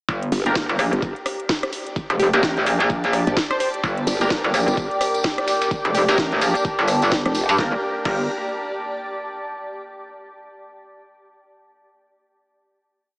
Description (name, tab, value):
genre	bass house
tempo	128 BPM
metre	4/4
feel	swing 60% on 16ths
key	G minor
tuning	A4 = 439 Hz
part	metallic wobble bass	bass	0.1-8.3 s	F1 to G2	-19 LUFS	equal	distortion, chorus, overdrive, sidechain pumping
part	dusty soul sampler-style drum kit	drums	0.1-7.5 s	hi-hat, snare drum	-33 LUFS	equal	none
part	electronic kick drum	drums	0.1-8.2 s	none	-27 LUFS	equal	overdrive
part	granular cloud pad	texture	1.2-9.4 s	G4 to A5	-29 LUFS	equal	built-in reverb, sidechain pumping
part	house drum kit	drums	0.2-8.2 s	crash cymbal, hi-hat, rim click, snare drum	-27 LUFS	equal	overdrive
part	growl bass	bass	0.3-7.5 s	F1 to Bb1	-22 LUFS	equal	chorus, tube saturation, sidechain pumping
part	orchestra-hit-like synth stab	stabs	0.5-8.2 s	Bb3 to Bb4	-27 LUFS	equal	built-in reverb, phaser, sidechain pumping, analog delay
part	plucky unison lead	melody	2.2-6.1 s	G4 to C5	-27 LUFS	equal	none
part	dark analog pad	sustained chords	4.6-7.8 s	Bb4 to D6	-25 LUFS	equal	chorus, sidechain pumping
part	tambourine	percussion	3.8-7.6 s	none	-32 LUFS	equal	none
room	moderate huge ambient reverb, RT60 4.1 s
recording	dreamy mix soaked in reverb, small speaker sound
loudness	-18 LUFS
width	side -32 dB against mid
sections	0.1-7.6 drop; 7.6-9.5 final chord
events	drop 0.1-7.6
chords	0.1 Gm